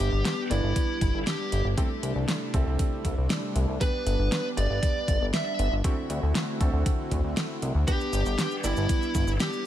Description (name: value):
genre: synthwave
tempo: 118 BPM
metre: 4/4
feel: straight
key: G major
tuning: A4 = 440 Hz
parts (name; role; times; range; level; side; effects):
- fuzz lead guitar; melody; 0.0-9.7 s; E4 to E5; -31 LUFS; right 1 dB; distortion, ping-pong delay
- soft supersaw; sustained chords; 0.0-9.7 s; C3 to F#4; -34 LUFS; equal; sidechain pumping
- warm concert grand piano; stabs; 0.0-9.7 s; B3 to D5; -37 LUFS; right 3 dB; ping-pong delay
- chorused synth bass; bass; 0.0-9.4 s; G1 to D2; -26 LUFS; equal; tube saturation, sidechain pumping
- pop drum kit; drums; 0.0-9.6 s; cabasa, hi-hat, snare drum; -32 LUFS; equal; studio reverb
- electronic kick drum; drums; 0.8-9.2 s; none; -27 LUFS; equal; overdrive, studio reverb
room: little or no reverb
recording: none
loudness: -24 LUFS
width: side -12 dB against mid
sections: 0.0-9.7 A section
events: none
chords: 0.0 G; 1.8 C6; 3.8 G; 5.8 D7; 7.9 G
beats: 0.25 0.76 1.27 | 1.78 2.29 2.79 3.30 | 3.81 4.32 4.83 5.33 | 5.84 6.35 6.86 7.37 | 7.88 8.39 8.89 9.40